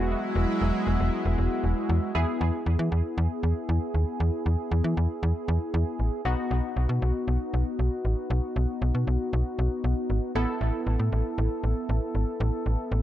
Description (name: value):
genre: pop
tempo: 117 BPM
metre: 4/4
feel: straight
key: E major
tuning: A4 = 441 Hz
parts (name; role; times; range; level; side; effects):
- funky polysynth comp; accompaniment; 0.0-13.0 s; G#3 to A4; -30 LUFS; equal; chorus, dub echo
- lush unison pad; sustained chords; 0.0-2.1 s; F#3 to E4; -32 LUFS; left 1 dB; chorus
- slap-like FM bass; bass; 0.0-13.0 s; E1 to E3; -24 LUFS; equal; none
room: light reverb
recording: echo-heavy mix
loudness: -24 LUFS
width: side -12 dB against mid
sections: 0.0-2.1 A section; 2.1-13.0 B section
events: none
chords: 0.0 Eadd9; 2.1 E; 6.3 B; 10.4 Asus2